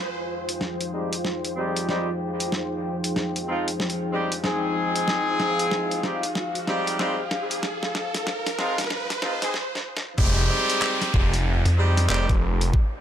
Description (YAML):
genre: glitch hop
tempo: 94 BPM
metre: 4/4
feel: swing 62% on 16ths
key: F minor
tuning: A4 = 440 Hz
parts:
  - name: dark analog pad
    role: sustained chords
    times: 0.0-10.1 s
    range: F3 to G5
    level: -31 LUFS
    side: left 2 dB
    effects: chorus, sidechain pumping
  - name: riser and downlifter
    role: sound effects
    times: 0.0-13.0 s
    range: none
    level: -31 LUFS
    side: right 1 dB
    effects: none
  - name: ethereal airy pad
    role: texture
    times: 0.0-9.5 s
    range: F4 to C5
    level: -35 LUFS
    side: equal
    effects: ensemble chorus, built-in reverb, sidechain pumping
  - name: boom bap sampler-style drum kit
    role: drums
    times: 0.5-12.7 s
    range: crash cymbal, handclaps, hi-hat, snare drum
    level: -28 LUFS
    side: equal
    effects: none
  - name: mellow horn section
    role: stabs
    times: 0.9-12.3 s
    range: F3 to Ab4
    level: -27 LUFS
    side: equal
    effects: sidechain pumping, low-pass filter, dub echo
  - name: phased detuned saw bass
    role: bass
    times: 10.2-12.7 s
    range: F1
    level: -23 LUFS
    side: equal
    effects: phaser
  - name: electronic kick drum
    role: drums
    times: 10.2-12.9 s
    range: none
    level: -21 LUFS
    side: equal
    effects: none
  - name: rubbery square bass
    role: bass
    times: 11.7-12.1 s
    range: F2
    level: -19 LUFS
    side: equal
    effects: none
room: moderate studio reverb, RT60 0.6 s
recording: high-pass filter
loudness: -22 LUFS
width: side -10 dB against mid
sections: 0.0-10.2 A section; 10.2-13.0 B section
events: build-up 0.0-10.2; drum fill 0.0-9.5, 9.5-10.2; riser 0.0-9.5; filter sweep on horn section 0.0-10.2; filter sweep 0.0-10.2; break 9.5-10.2; drop 10.2-13.0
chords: 0.0 Fm9